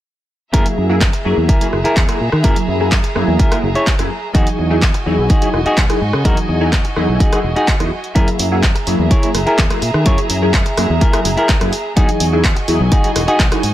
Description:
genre	filtered disco house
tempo	126 BPM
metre	4/4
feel	straight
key	F# mixolydian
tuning	A4 = 440 Hz
part	funky polysynth comp	accompaniment	0.5-13.6 s	E3 to G#4	-20 LUFS	equal	chorus, phaser, sidechain pumping, low-pass filter
part	clear studio violin section	sustained chords	0.5-13.7 s	F#4 to A#5	-24 LUFS	right 2 dB	sidechain pumping, low-pass filter
part	semi-hollow electric guitar	riff	0.5-13.7 s	D#4 to C#5	-19 LUFS	equal	sidechain pumping, low-pass filter
part	fingered electric bass	bass	0.5-13.7 s	E1 to D#3	-18 LUFS	equal	tube saturation, sidechain pumping, low-pass filter
part	electronic kick drum	drums	0.5-13.5 s	none	-15 LUFS	equal	none
part	punchy analog drum machine	drums	0.5-13.7 s	handclaps, hi-hat, rim click	-21 LUFS	equal	none
room	little or no reverb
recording	none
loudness	-12 LUFS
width	side -13 dB against mid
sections	0.5-13.7 A section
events	none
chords	0.5 F#9; 4.3 Emaj9; 8.2 F#9; 12.0 Emaj9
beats	| 0.54 1.01 1.49 1.97 | 2.44 2.92 3.40 3.87 | 4.35 4.82 5.30 5.78 | 6.25 6.73 7.21 7.68 | 8.16 8.63 9.11 9.59 | 10.06 10.54 11.01 11.49 | 11.97 12.44 12.92 13.39

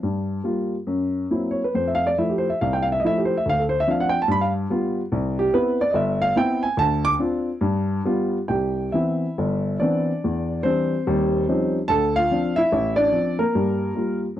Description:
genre	solo jazz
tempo	142 BPM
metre	4/4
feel	swing 67% on 8ths, uneven beats, rubato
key	C major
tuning	A4 = 438 Hz
part	warm baby grand piano	solo	0.0-14.4 s	G1 to D6	-20 LUFS	equal	none
room	light reverb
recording	dry, close 1970s-style studio recording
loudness	-20 LUFS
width	side -12 dB against mid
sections	0.0-8.5 A section; 8.5-14.4 B section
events	grand piano solo 0.0-8.5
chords	0.0 Gm7; 0.9 F#7#11; 1.7 Fmaj7; 3.5 Dm7; 4.3 G7; 5.1 Cmaj7; 6.8 Dm7; 7.6 G7; 8.5 Cmaj7; 10.2 Cadd9/E; 11.1 Eb13; 11.9 Dm7; 13.5 Gm7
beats	| 0.02 0.44 0.86 1.29 | 1.73 2.17 2.60 3.03 | 3.45 3.87 4.29 4.71 | 5.12 5.53 5.94 6.35 | 6.77 7.18 7.61 8.05 | 8.49 8.94 9.37 9.80 | 10.22 10.64 11.06 11.48 | 11.89 12.30 12.71 13.12 | 13.53 13.95 14.37

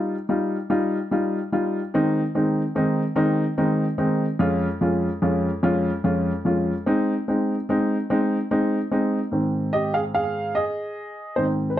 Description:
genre	pop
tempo	49 BPM (dotted quarters)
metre	6/8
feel	straight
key	unclear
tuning	A4 = 440 Hz
part	warm upright piano	solo	0.0-11.8 s	F2 to F5	-20 LUFS	equal	slapback echo
room	light reverb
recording	dry, close 1970s-style studio recording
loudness	-20 LUFS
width	side -12 dB against mid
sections	0.0-9.3 A section; 9.3-11.8 B section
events	upright piano solo 9.3-11.8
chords	0.0 Ebadd9; 1.9 Ab/Eb; 4.4 Db/F; 6.9 Ab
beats	0.70 | 1.94 3.17 | 4.40 5.63 | 6.86 8.10 | 9.33 10.56 | 11.79

